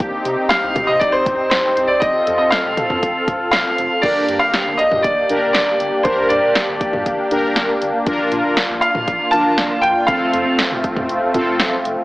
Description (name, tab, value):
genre	synth-pop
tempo	119 BPM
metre	4/4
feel	straight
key	unclear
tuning	A4 = 440 Hz
part	lush unison pad	sustained chords	0.0-12.0 s	A3 to A4	-21 LUFS	equal	chorus
part	round analog bass	bass	0.0-12.0 s	F1 to C3	-33 LUFS	equal	none
part	deep house drum kit	drums	0.0-12.0 s	crash cymbal, hi-hat, kick drum, snare drum, toms	-21 LUFS	equal	none
part	clear concert grand piano	melody	0.5-10.5 s	C5 to A5	-17 LUFS	equal	slapback echo
part	analog synth brass	accompaniment	4.0-11.7 s	C4 to Bb4	-21 LUFS	equal	chorus
room	wet plate reverb, RT60 2.0 s, digital ambience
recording	heavily compressed radio sound, multiband compression, AM radio sound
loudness	-14 LUFS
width	side -19 dB against mid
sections	0.0-4.0 A section; 4.0-12.0 B section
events	none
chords	0.0 Cm; 2.0 F; 4.0 Gm; 8.1 Bb; 10.1 F